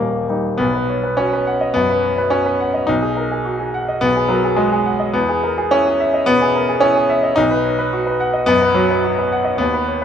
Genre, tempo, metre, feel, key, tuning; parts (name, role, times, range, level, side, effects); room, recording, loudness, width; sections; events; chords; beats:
classical, virtuoso piano study; 106 BPM; 4/4; rubato; B major; A4 = 440 Hz
clear grand piano; solo; 0.0-10.0 s; Eb1 to F#5; -15 LUFS; equal
moderate recital hall reverb, RT60 1.7 s; -15 LUFS; side -8 dB against mid
0.6-10.0 A section
0.0 Eb; 0.6 B; 2.9 G#m7/B; 5.1 Emaj7; 7.4 B
| 0.59 1.18 1.75 2.32 | 2.88 3.45 4.02 4.58 | 5.14 5.71 6.26 6.81 | 7.37 7.94 8.50 9.06 | 9.61